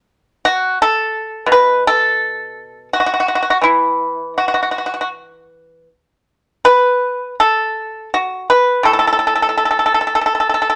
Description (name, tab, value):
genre	chinese traditional, Chinese solo plucked strings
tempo	78-87 BPM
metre	4/4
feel	rubato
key	unclear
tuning	A4 = 440 Hz
part	pipa	solo	0.5-10.8 s	A2 to B4	-15 LUFS	equal	none
room	moderate studio reverb, RT60 0.8 s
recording	none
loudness	-16 LUFS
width	mono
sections	0.0-10.8 A section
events	none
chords	none